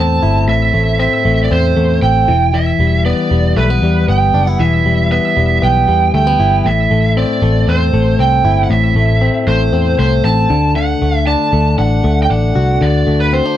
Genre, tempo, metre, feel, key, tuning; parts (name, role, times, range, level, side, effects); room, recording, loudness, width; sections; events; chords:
jangly indie pop; 117 BPM; 4/4; straight; A4 = 440 Hz
lead guitar through a small cranked amp; melody; 0.0-13.6 s; B4 to A5; -16 LUFS; right 5 dB; overdrive
direct-recorded clean electric guitar; arpeggios; 0.0-13.6 s; A2 to F#4; -16 LUFS; left 5 dB
vintage muted picked electric bass; bass; 0.0-13.4 s; E1 to E2; -14 LUFS; equal
light reverb; dark, warm production; -10 LUFS; side -11 dB against mid
0.0-13.6 A section
0.0 Am; 2.3 Em; 6.6 Am; 10.5 D